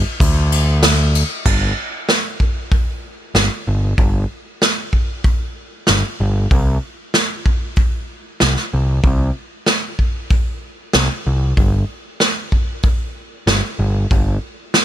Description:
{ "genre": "rock, shoegaze and dream pop", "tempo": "95 BPM", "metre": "4/4", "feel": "straight", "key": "unclear", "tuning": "A4 = 443 Hz", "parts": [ { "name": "growling picked electric bass", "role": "bass", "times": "0.0-14.4 s", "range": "G1 to D2", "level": "-16 LUFS", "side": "equal", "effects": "overdrive" }, { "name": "soft brush drum kit", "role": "drums", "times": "0.2-14.8 s", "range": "crash cymbal, hi-hat, kick drum, snare drum", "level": "-16 LUFS", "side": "equal", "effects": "none" } ], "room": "little or no reverb", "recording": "none", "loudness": "-15 LUFS", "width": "side -11 dB against mid", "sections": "0.0-1.5 A section; 1.5-14.8 B section", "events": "none", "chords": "none", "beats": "0.20 0.83 | 1.46 2.09 2.72 3.35 | 3.98 4.62 5.25 5.88 | 6.52 7.15 7.78 8.42 | 9.05 9.68 10.32 10.95 | 11.58 12.21 12.85 13.48 | 14.12 14.75" }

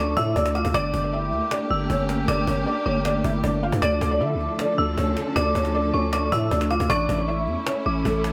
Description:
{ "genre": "hip hop, trap", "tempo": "156 BPM", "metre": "4/4", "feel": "half-time", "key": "D harmonic minor", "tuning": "A4 = 440 Hz", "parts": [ { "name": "felt-muted upright piano", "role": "melody", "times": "0.0-8.3 s", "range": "A3 to F5", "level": "-28 LUFS", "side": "equal", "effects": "ensemble chorus, low-pass filter, delay" }, { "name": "dark detuned synth bell", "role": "second line", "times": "0.0-8.0 s", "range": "C#6 to E6", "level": "-30 LUFS", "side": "equal", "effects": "chorus, delay" }, { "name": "dark symphonic string section", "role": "sustained chords", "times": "0.0-8.3 s", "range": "D3 to A4", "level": "-32 LUFS", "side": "equal", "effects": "none" }, { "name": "growling 808-style bass", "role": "bass", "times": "0.0-8.3 s", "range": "G1 to D3", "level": "-28 LUFS", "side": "equal", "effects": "none" }, { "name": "cajon", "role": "drums", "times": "0.2-8.3 s", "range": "none", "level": "-34 LUFS", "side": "equal", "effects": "none" } ], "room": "light reverb, small room ambience", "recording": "bright 1980s-style digital production", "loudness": "-23 LUFS", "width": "mono", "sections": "0.0-8.3 A section", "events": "none", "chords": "0.0 Dm; 0.7 Gm; 3.8 Dm; 6.9 A", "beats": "0.36 | 0.74 1.13 1.51 1.90 | 2.28 2.67 3.05 3.44 | 3.82 4.21 4.59 4.97 | 5.36 5.74 6.13 6.51 | 6.90 7.28 7.67 8.05" }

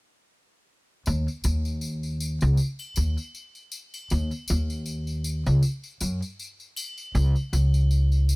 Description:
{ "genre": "trip hop", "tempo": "79 BPM", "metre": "4/4", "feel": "swing 56% on 16ths", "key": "unclear", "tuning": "A4 = 436 Hz", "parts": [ { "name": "upright bass", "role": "bass", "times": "1.1-8.4 s", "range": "Db2 to Gb2", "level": "-22 LUFS", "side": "equal", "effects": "none" }, { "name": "tambourine and triangle", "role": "percussion", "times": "1.1-8.4 s", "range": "none", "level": "-36 LUFS", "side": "left 2 dB", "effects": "none" } ], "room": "small room reverb", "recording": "none", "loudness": "-24 LUFS", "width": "side -28 dB against mid", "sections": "1.1-8.4 A section", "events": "none", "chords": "none", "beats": "| 1.07 1.83 2.59 3.35 | 4.11 4.87 5.62 6.38 | 7.14 7.90" }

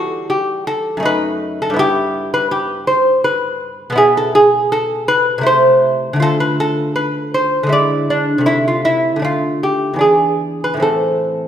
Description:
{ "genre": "classical, baroque-style dance for lute", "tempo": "80 BPM", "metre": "3/4", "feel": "rubato", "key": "E minor, A minor from 4.0 s", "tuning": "A4 = 440 Hz", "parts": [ { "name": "lute", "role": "solo", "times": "0.0-11.5 s", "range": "E2 to D5", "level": "-13 LUFS", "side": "equal", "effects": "none" } ], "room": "wet recital hall reverb, RT60 1.7 s", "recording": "recorded in a church or concert hall", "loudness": "-13 LUFS", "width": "side -9 dB against mid", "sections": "0.0-11.5 A section", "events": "none", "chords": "0.0 Em; 1.0 B7/F#; 1.8 Em/G; 4.0 E5/B; 5.5 Am/C; 6.2 Dm; 7.8 E7/D; 8.5 Am/C; 9.3 Dm; 10.0 E7; 10.8 Am", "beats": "0.29 1.04 | 1.77 2.50 3.24 | 3.98 4.73 5.48 | 6.24 6.99 7.75 | 8.50 9.25 10.03 | 10.83" }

